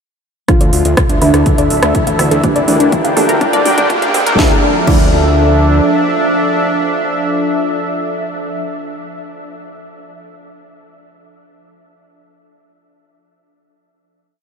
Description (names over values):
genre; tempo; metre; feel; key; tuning
melodic techno; 123 BPM; 4/4; straight; D minor; A4 = 438 Hz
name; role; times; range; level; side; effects
soft supersaw; melody; 0.5-9.1 s; D3 to F4; -18 LUFS; equal; sidechain pumping, low-pass filter, ping-pong delay
sweeping resonant pad; sustained chords; 0.5-8.6 s; F3 to G5; -18 LUFS; equal; chorus, sidechain pumping
analog pluck; arpeggios; 0.5-5.0 s; C4 to F5; -19 LUFS; equal; chorus, phaser, cassette tape, sidechain pumping, ping-pong delay
filtered dub chord stab; stabs; 0.5-9.1 s; Bb2 to F4; -21 LUFS; right 3 dB; none
electronic kick drum; drums; 0.5-5.0 s; none; -15 LUFS; equal; none
house drum kit; drums; 0.5-5.0 s; crash cymbal, hi-hat, rim click, snare drum, toms; -19 LUFS; equal; sidechain pumping on hats, sidechain pumping on toms, sidechain pumping on cymbals
riser; sound effects; 2.0-4.4 s; none; -24 LUFS; right 1 dB; none
fat analog bass; bass; 0.6-5.8 s; D1 to D2; -16 LUFS; equal; sidechain pumping
room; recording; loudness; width
wet huge ambient reverb, RT60 7.4 s; dreamy mix soaked in reverb, high-pass filter; -10 LUFS; side -6 dB against mid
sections
0.5-4.4 build; 4.4-8.3 final chord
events
build-up 0.5-4.4; drum fill 0.5-4.4; filter sweep on synth arpeggio sound 0.5-4.4; filter sweep on supersaw synth 0.5-4.4; filter sweep 0.5-4.4; riser 2.0-4.4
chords
0.5 Dmadd9; 2.4 Gm/D; 4.4 Dmadd9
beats
| 0.48 0.97 1.46 1.95 | 2.44 2.92 3.41 3.90 | 4.39 4.88 5.36 5.85 | 6.34 6.83 7.31 7.80